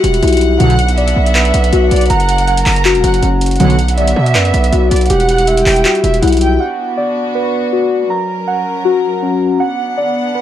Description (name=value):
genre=hip hop, trap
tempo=160 BPM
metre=4/4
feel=half-time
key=B harmonic minor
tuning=A4 = 437 Hz
part: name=warm chamber string section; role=sustained chords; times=0.0-10.4 s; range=F#3 to F#5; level=-22 LUFS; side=equal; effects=none
part: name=muted felt-like synth keys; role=arpeggios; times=0.0-10.4 s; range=C#4 to A#5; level=-14 LUFS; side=left 2 dB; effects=chorus, low-pass filter, ping-pong delay
part: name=distorted 808-style bass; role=bass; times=0.0-6.6 s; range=E1 to B2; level=-13 LUFS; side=right 1 dB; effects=distortion
part: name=booming analog drum machine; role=drums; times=0.0-6.5 s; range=handclaps, hi-hat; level=-19 LUFS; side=equal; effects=none
part: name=warm studio violin section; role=second line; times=0.6-6.6 s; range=D5 to A#5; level=-19 LUFS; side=right 3 dB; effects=ping-pong delay
part: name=analog synth brass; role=stabs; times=0.6-0.8, 3.6-3.8 s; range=B2 to F#3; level=-15 LUFS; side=right 1 dB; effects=chorus, ping-pong delay
room=light reverb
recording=dark, warm production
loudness=-10 LUFS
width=side -11 dB against mid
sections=0.0-6.6 A section; 6.6-10.4 A section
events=none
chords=0.0 Emadd9; 0.6 Bm; 2.1 F#; 3.6 Bm; 5.1 Emadd9; 6.6 Bm; 8.1 F#; 9.6 Bm